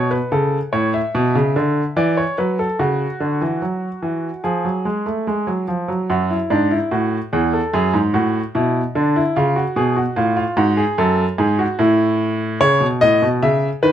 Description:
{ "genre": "classical, baroque-style two-part invention for grand piano", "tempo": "73 BPM", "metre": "4/4", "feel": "straight", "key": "F# minor", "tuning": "A4 = 441 Hz", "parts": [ { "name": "clear baby grand piano", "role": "solo", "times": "0.0-13.9 s", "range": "E2 to E5", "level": "-16 LUFS", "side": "equal", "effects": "none" } ], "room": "light reverb", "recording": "none", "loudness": "-16 LUFS", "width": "side -10 dB against mid", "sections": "0.0-6.1 A section; 6.1-13.9 B section", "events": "none", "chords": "0.0 Aadd9; 1.1 Bmadd9; 2.8 C#sus4; 4.4 Fm; 6.1 F#m; 7.7 G#m7b5/F#; 9.4 C#7; 11.0 F#m; 12.6 C#m", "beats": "0.32 1.14 1.96 | 2.79 3.61 4.44 5.26 | 6.09 6.91 7.73 8.54 | 9.36 10.17 10.98 11.79 | 12.61 13.42" }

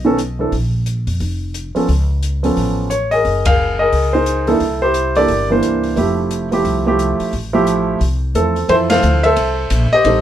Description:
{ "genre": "jazz piano trio", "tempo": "176 BPM", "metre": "4/4", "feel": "swing 62% on 8ths", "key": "F major", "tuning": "A4 = 441 Hz", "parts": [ { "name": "warm grand piano", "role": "melody", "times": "0.0-10.2 s", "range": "D#3 to F5", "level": "-14 LUFS", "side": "right 1 dB", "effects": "none" }, { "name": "upright bass", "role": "bass", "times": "0.0-10.2 s", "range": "F1 to F2", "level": "-19 LUFS", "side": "equal", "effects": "none" }, { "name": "open jazz drum kit", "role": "drums", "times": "0.2-10.2 s", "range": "hi-hat, kick drum, ride cymbal, snare drum", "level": "-25 LUFS", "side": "left 2 dB", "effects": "none" } ], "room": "light reverb", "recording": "band playing live in one room", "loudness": "-14 LUFS", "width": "side -11 dB against mid", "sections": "0.0-8.7 A section; 8.7-10.2 B section", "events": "band accent 3.4, 8.9", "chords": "0.0 B9; 0.5 Bb5; 1.9 Db7b13; 3.2 Gb69; 4.6 C13; 6.0 Fmaj9; 8.7 Fmaj7", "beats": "0.19 | 0.53 0.87 1.21 1.55 | 1.89 2.23 2.57 2.91 | 3.25 3.59 3.93 4.27 | 4.61 4.95 5.29 5.63 | 5.97 6.31 6.65 6.99 | 7.33 7.67 8.01 8.36 | 8.70 9.04 9.38 9.72 | 10.06" }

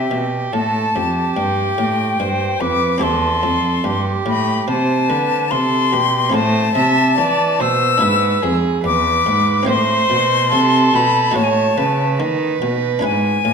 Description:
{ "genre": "classical, baroque-style sonata movement with continuo", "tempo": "72 BPM", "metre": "4/4", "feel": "rubato", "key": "C major, A minor from 6.3 s", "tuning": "A4 = 438 Hz", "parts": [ { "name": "silver concert flute", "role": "melody", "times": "0.0-13.5 s", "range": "E5 to E6", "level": "-18 LUFS", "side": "left 5 dB", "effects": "none" }, { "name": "dark violin", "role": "second line", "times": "0.0-13.5 s", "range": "G4 to E5", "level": "-20 LUFS", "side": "right 5 dB", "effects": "none" }, { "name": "buff-stop harpsichord", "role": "accompaniment", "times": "0.0-13.5 s", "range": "E2 to C5", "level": "-24 LUFS", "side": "left 2 dB", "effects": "none" }, { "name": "rich cello", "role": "bass", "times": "0.0-13.5 s", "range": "E2 to E3", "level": "-20 LUFS", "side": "right 1 dB", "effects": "none" } ], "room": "wet recital hall reverb, RT60 1.5 s", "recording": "none", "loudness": "-14 LUFS", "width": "side -6 dB against mid", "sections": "0.0-13.5 A section", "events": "none", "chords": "0.0 C; 3.0 C/E; 6.3 Am; 8.0 E7; 9.7 Am; 11.4 B7/A", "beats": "0.54 1.37 2.20 | 3.02 3.85 4.68 5.51 | 6.34 7.18 8.03 8.85 | 9.69 10.52 11.36 12.20 | 13.04" }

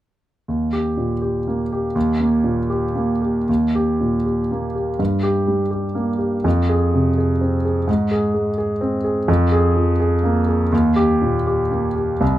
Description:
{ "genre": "classical, romantic character piece for solo piano", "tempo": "107-131 BPM", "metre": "3/4", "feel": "rubato", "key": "Eb major", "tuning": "A4 = 441 Hz", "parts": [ { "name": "warm concert grand piano", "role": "solo", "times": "0.5-12.4 s", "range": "C2 to Ab4", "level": "-17 LUFS", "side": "equal", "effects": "none" } ], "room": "light reverb", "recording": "close, detailed microphones", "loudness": "-17 LUFS", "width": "side -14 dB against mid", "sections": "0.5-3.5 A section; 3.5-12.4 B section", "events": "none", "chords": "0.5 Eb; 5.0 Gm; 6.4 Fm; 7.9 Ab; 9.3 Bb5/F; 10.7 Eb", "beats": "| 0.48 0.98 1.47 | 1.95 2.44 2.94 | 3.48 4.00 4.50 | 4.99 5.47 5.95 | 6.45 6.94 7.41 | 7.88 8.34 8.80 | 9.28 9.76 10.24 | 10.72 11.21 11.71 | 12.21" }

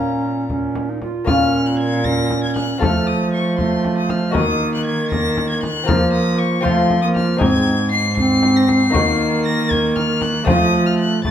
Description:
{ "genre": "classical, renaissance-style consort dance", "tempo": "78 BPM (dotted quarters)", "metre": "6/8", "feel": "straight", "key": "Bb minor", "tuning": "A4 = 440 Hz", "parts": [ { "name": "warm violin", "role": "melody", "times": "0.0-11.3 s", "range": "Bb5 to C7", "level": "-23 LUFS", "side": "left 3 dB", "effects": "none" }, { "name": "bass recorder", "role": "second line", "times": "0.0-11.3 s", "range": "A3 to F4", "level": "-20 LUFS", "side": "right 2 dB", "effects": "none" }, { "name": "lute", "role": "accompaniment", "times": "0.0-11.3 s", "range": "Ab2 to C5", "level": "-24 LUFS", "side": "left 4 dB", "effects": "none" }, { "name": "warm cello", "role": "bass", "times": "0.0-11.3 s", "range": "Ab2 to F3", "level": "-20 LUFS", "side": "right 1 dB", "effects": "none" }, { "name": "frame drum", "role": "percussion", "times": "0.5-11.3 s", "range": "none", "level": "-23 LUFS", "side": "left 2 dB", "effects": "none" } ], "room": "wet stone room reverb, RT60 1.0 s", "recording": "heard from further back in the room", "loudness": "-15 LUFS", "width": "side -9 dB against mid", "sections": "0.0-1.3 A section; 1.3-11.3 A section", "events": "none", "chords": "0.0 Bbm; 2.8 F; 4.4 Ebm; 5.9 Fsus4; 6.6 F; 7.4 Ab; 8.9 Ebm; 10.5 F", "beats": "0.50 | 1.27 2.05 | 2.81 3.58 | 4.35 5.12 | 5.88 6.65 | 7.41 8.18 | 8.94 9.71 | 10.47 11.24" }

